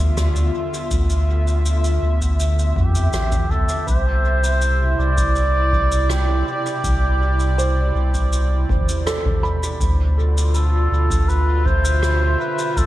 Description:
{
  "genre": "ambient dub",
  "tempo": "81 BPM",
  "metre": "4/4",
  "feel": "straight",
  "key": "unclear",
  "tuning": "A4 = 440 Hz",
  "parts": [
    { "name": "airy breathy pad", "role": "sustained chords", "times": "0.0-12.9 s", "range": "B2 to E5", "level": "-26 LUFS", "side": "right 1 dB", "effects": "chorus" },
    { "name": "warm sub bass", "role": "bass", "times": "0.0-12.9 s", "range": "G1 to F2", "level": "-18 LUFS", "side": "equal", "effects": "none" },
    { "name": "soft-mallet drum kit", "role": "drums", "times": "0.2-12.9 s", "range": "rim click, shaker, toms", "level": "-28 LUFS", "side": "equal", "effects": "studio ambience, dub echo" },
    { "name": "electronic kick drum", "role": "drums", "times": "0.9-12.9 s", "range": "none", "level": "-24 LUFS", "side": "equal", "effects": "overdrive, studio ambience" },
    { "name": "trumpet with cup mute", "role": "melody", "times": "2.8-12.9 s", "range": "G4 to D5", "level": "-24 LUFS", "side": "equal", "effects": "dub echo" },
    { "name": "felt-muted upright piano", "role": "arpeggios", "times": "7.6-12.9 s", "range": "A4 to B5", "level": "-29 LUFS", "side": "right 2 dB", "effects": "tape echo" }
  ],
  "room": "light reverb, small room ambience",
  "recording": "none",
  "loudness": "-16 LUFS",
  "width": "side -15 dB against mid",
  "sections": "0.0-3.9 A section; 3.9-12.9 B section",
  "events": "none",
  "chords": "0.0 Dm69; 3.9 Cmaj9; 9.8 Dm69"
}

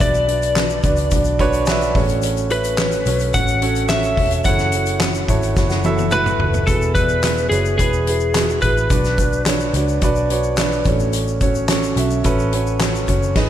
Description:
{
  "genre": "piano-driven pop",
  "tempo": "108 BPM",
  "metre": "4/4",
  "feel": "straight",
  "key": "F# minor",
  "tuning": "A4 = 440 Hz",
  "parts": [
    { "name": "lightly driven lead guitar", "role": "melody", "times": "0.0-9.4 s", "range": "G#4 to F#5", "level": "-21 LUFS", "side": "left 2 dB", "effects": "slapback echo" },
    { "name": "warm grand piano", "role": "accompaniment", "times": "0.0-13.5 s", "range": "A2 to A5", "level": "-21 LUFS", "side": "right 3 dB", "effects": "slapback echo" },
    { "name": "vintage muted picked electric bass", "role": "bass", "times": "0.0-13.5 s", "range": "E1 to C#2", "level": "-22 LUFS", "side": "equal", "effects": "none" },
    { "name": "loose indie drum kit", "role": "drums", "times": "0.0-13.5 s", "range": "crash cymbal, handclaps, hi-hat, kick drum, snare drum, toms", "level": "-20 LUFS", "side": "left 1 dB", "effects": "none" },
    { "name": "tube shaker", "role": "percussion", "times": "0.0-13.4 s", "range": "none", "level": "-35 LUFS", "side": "left 10 dB", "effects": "none" }
  ],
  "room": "moderate lush hall reverb, RT60 2.9 s",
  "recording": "big arena sound",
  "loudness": "-15 LUFS",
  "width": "side -11 dB against mid",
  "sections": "0.0-6.7 A section; 6.7-13.5 B section",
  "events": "grand piano fill 5.0-6.7; drum fill 5.6-6.7",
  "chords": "0.0 Bm; 2.0 F#m/A; 4.5 F#m7; 6.7 Eadd9; 8.9 Bm; 10.9 F#m/A"
}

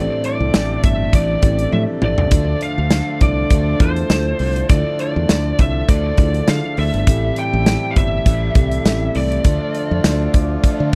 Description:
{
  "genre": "1980s-style pop",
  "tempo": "101 BPM",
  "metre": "4/4",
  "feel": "swing 55% on 16ths",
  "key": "D minor",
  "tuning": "A4 = 441 Hz",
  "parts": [
    { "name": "lead guitar through a small cranked amp", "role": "melody", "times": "0.0-10.9 s", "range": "C5 to G5", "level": "-25 LUFS", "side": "equal", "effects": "overdrive, tape echo" },
    { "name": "bell-like tine electric piano", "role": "accompaniment", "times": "0.0-10.9 s", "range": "A2 to C5", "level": "-27 LUFS", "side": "equal", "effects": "phaser" },
    { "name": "overdriven semi-hollow guitar", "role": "accompaniment", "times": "0.0-10.9 s", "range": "A2 to D4", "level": "-32 LUFS", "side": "equal", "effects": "none" },
    { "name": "hand-pumped harmonium", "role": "sustained chords", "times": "0.0-10.9 s", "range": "C3 to F4", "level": "-30 LUFS", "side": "equal", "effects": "none" },
    { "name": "fingered electric bass", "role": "bass", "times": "0.0-10.9 s", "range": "G1 to D3", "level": "-22 LUFS", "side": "equal", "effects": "none" },
    { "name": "big rock drum kit", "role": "drums", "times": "0.2-10.9 s", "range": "hi-hat, kick drum, snare drum, tambourine, toms", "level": "-18 LUFS", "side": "equal", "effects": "none" }
  ],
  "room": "little or no reverb",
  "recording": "dry, close 1970s-style studio recording",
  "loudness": "-17 LUFS",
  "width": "mono",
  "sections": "0.0-10.9 A section",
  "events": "drum fill 1.7-2.3; tine electric piano fill 10.6-10.9",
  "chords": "0.0 Am7; 2.3 Dmadd9; 7.1 Am7; 9.4 Dm"
}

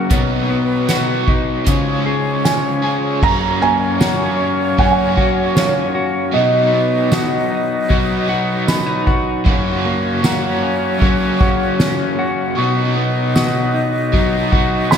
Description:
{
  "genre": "dream pop",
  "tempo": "77 BPM",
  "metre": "4/4",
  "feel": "straight",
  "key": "F# major",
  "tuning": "A4 = 444 Hz",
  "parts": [
    { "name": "crunchy overdriven guitar", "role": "accompaniment", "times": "0.0-15.0 s", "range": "F#2 to G#4", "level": "-21 LUFS", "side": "right 2 dB", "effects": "tremolo, wide subtle chorus" },
    { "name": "clear woodwind section", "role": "sustained chords", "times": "0.0-15.0 s", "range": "D#3 to D#5", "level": "-23 LUFS", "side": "equal", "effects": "none" },
    { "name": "clean electric guitar", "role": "arpeggios", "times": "0.0-15.0 s", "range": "F#2 to G#4", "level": "-19 LUFS", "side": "left 3 dB", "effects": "analog chorus, ping-pong delay" },
    { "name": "soft-mallet drum kit", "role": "drums", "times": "0.1-15.0 s", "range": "crash cymbal, hi-hat, kick drum, ride cymbal, snare drum, tambourine", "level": "-19 LUFS", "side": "right 1 dB", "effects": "gated reverb" },
    { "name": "celesta", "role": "texture", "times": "0.1-15.0 s", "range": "C#5 to D#6", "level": "-29 LUFS", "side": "right 1 dB", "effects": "ping-pong delay" },
    { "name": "felt-muted upright piano", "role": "melody", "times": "2.4-9.0, 14.9-15.0 s", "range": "C#5 to B5", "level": "-19 LUFS", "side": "right 3 dB", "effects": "lush chorus, ping-pong delay" }
  ],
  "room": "moderate lush hall reverb, RT60 2.5 s",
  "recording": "bright 1980s-style digital production",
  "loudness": "-14 LUFS",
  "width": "side -7 dB against mid",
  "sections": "0.0-3.2 A section; 3.2-15.0 B section",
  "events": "none",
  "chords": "0.1 B; 1.7 C#; 3.2 F#; 6.3 B; 9.5 F#; 12.6 B"
}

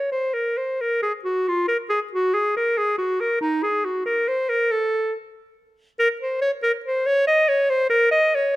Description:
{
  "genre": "classical, baroque-style fantasia for unaccompanied clarinet",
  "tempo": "93 BPM (dotted quarters)",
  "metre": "12/8",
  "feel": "rubato",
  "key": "Bb minor",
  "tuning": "A4 = 441 Hz",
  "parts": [
    { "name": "clear clarinet", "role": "solo", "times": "0.0-8.6 s", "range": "Eb4 to Eb5", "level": "-19 LUFS", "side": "equal", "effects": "none" }
  ],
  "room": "moderate recital hall reverb, RT60 1.5 s",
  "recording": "close, detailed microphones",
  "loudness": "-19 LUFS",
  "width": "side -17 dB against mid",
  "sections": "0.8-8.6 A section",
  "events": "none",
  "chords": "none"
}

